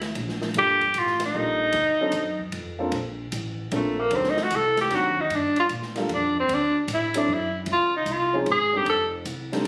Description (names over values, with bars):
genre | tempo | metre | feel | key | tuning
jazz, small-group swing and bop | 152 BPM | 3/4 | swing 67% on 8ths | Bb major | A4 = 439 Hz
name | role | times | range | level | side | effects
upright bass | bass | 0.0-9.7 s | F1 to Bb2 | -36 LUFS | equal | none
open jazz drum kit | drums | 0.0-9.7 s | hi-hat, kick drum, ride cymbal, snare drum | -38 LUFS | equal | none
warm tenor saxophone | melody | 0.6-9.0 s | A3 to A4 | -24 LUFS | equal | none
warm upright piano | accompaniment | 0.6-9.6 s | F3 to D5 | -31 LUFS | equal | none
room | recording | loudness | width
light reverb | recorded on a phone in the room, studio reverb, compression | -24 LUFS | mono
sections
0.0-2.9 A section; 2.9-9.7 B section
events
tenor saxophone solo 2.9-9.7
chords
0.0 E7(b5, no3) (rootless); 0.6 Ebmaj9#11; 1.7 D7b9; 2.5 F; 2.9 Bbmaj9; 4.1 D7b9; 5.3 Gm7; 6.5 Dadd9; 7.7 Dbmaj9; 8.9 F13